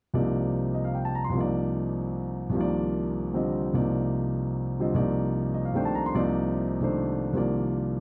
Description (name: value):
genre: jazz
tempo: 150 BPM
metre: 3/4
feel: swing 64% on 8ths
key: C dorian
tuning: A4 = 440 Hz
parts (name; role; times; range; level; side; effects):
- warm concert grand piano; accompaniment; 0.1-8.0 s; C2 to C6; -27 LUFS; equal; none
room: moderate studio reverb, RT60 0.7 s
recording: dark, warm production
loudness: -28 LUFS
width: mono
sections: 0.1-8.0 A section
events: none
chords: 0.1 Cm11